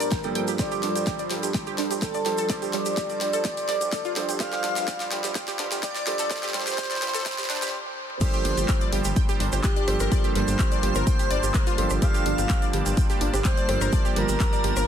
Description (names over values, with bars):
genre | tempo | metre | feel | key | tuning
progressive house | 126 BPM | 4/4 | straight | G minor | A4 = 444 Hz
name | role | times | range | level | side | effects
expressive portamento lead | melody | 0.0-14.9 s | G4 to F5 | -30 LUFS | equal | lush chorus, sidechain pumping, dub echo
airy dreamy lead | second line | 0.0-14.9 s | G4 to F5 | -36 LUFS | right 1 dB | chorus, sidechain pumping, dub echo
filtered supersaw swell | sustained chords | 0.0-14.9 s | G3 to A5 | -35 LUFS | equal | sidechain pumping, low-pass filter
analog pluck | arpeggios | 0.0-14.8 s | G3 to G5 | -31 LUFS | right 2 dB | chorus, sidechain pumping, dub echo
warm grand piano | stabs | 0.0-14.9 s | G2 to A5 | -32 LUFS | right 5 dB | sidechain pumping, low-pass filter, dub echo
dark detuned saw bass | bass | 0.0-14.8 s | G1 | -29 LUFS | left 1 dB | sidechain pumping, high-pass filter
pop drum kit | drums | 0.0-14.9 s | crash cymbal, handclaps, hi-hat, rim click, snare drum, toms | -32 LUFS | left 2 dB | high-pass filter on snare, small room ambience, high-pass filter on hats, high-pass filter on toms, high-pass filter on cymbals
tube shaker | percussion | 0.0-14.9 s | none | -36 LUFS | right 4 dB | none
electronic kick drum | drums | 0.1-14.5 s | none | -24 LUFS | left 1 dB | small room ambience
room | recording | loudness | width
digital ambience | dense, heavily limited modern master, high-pass filter | -22 LUFS | side -9 dB against mid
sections
0.0-8.2 A section; 8.2-14.9 B section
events
build-up 0.0-8.2; drum fill 0.0-7.7, 7.7-8.2; filter sweep on synth pluck 0.0-8.2; filter sweep on grand piano 0.0-8.2; filter sweep on supersaw synth 0.0-8.2; filter sweep on analog synth lead 0.0-8.2; filter sweep 0.0-8.2; stop 7.7-8.2; drop 8.2-14.9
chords
0.0 Gm11; 0.6 Dm7/G; 8.2 Gm11